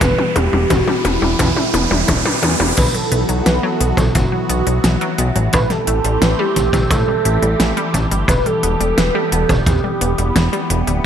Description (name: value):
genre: synthwave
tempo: 87 BPM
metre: 4/4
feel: straight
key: E minor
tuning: A4 = 440 Hz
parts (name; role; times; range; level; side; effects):
- warm velvety synth lead; melody; 0.0-10.7 s; E4 to B4; -21 LUFS; right 2 dB; chorus, vintage 12-bit sampler grit, digital delay
- phased analog pad; sustained chords; 0.0-11.1 s; E3 to B4; -23 LUFS; equal; phaser, chorus, sidechain pumping
- wide unison pluck; arpeggios; 0.0-11.0 s; E3 to B3; -24 LUFS; left 2 dB; digital delay
- fat analog bass; bass; 0.0-11.0 s; D1 to A2; -18 LUFS; equal; none
- kick drum; drums; 0.0-9.8 s; none; -18 LUFS; equal; none
- pop drum kit; drums; 0.0-11.0 s; crash cymbal, hi-hat, snare drum, toms; -20 LUFS; equal; gated reverb
- riser; sound effects; 0.0-2.8 s; none; -23 LUFS; right 4 dB; none
room: moderate plate reverb, RT60 2.1 s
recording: bright 1980s-style digital production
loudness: -14 LUFS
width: side -8 dB against mid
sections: 0.0-2.8 A section; 2.8-11.1 B section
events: drum fill 0.0-2.8; riser 0.0-2.8; filter sweep on analog synth pad 0.0-2.8; filter sweep on synth arpeggio sound 0.0-2.8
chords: 0.0 Em; 2.8 Bsus4; 5.5 Am7; 8.3 Em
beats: | 0.01 0.70 1.39 2.08 | 2.77 3.46 4.15 4.84 | 5.53 6.22 6.91 7.60 | 8.29 8.98 9.67 10.36 | 11.05